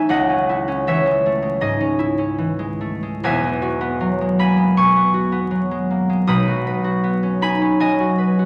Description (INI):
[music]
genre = classical, solo harp piece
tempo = 79 BPM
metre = 4/4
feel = rubato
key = unclear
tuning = A4 = 440 Hz
[part]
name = concert harp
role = solo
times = 0.0-8.5 s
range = E1 to D#6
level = -19 LUFS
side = equal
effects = none
[sound]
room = wet recital hall reverb, RT60 1.6 s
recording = vinyl crackle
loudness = -19 LUFS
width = mono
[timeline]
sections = 0.0-8.5 A section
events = none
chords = 0.1 C#madd9; 3.2 E69; 6.3 Badd9